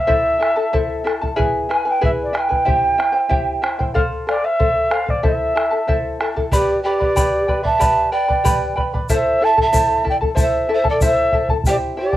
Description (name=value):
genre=andean folk, Andean ensemble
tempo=93 BPM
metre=2/4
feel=straight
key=A minor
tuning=A4 = 442 Hz
part: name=mellow quena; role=melody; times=0.0-12.2 s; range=D5 to A5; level=-18 LUFS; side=right 1 dB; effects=cassette tape
part: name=charango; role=accompaniment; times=0.0-12.2 s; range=E4 to B5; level=-21 LUFS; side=left 2 dB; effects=none
part: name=bombo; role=percussion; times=0.1-12.2 s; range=none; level=-21 LUFS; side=equal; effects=none
part: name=breathy mellow pan flute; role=second line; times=6.5-12.2 s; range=G4 to E5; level=-22 LUFS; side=right 2 dB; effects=none
part: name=tube shaker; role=percussion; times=6.5-11.8 s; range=none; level=-32 LUFS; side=left 4 dB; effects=none
room=light reverb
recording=home recording on cassette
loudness=-15 LUFS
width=side -14 dB against mid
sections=0.0-6.5 A section; 6.5-12.2 B section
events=none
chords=0.1 Am; 1.4 E; 2.7 C; 4.0 F; 5.2 Am; 6.5 G; 9.1 Am; 11.7 C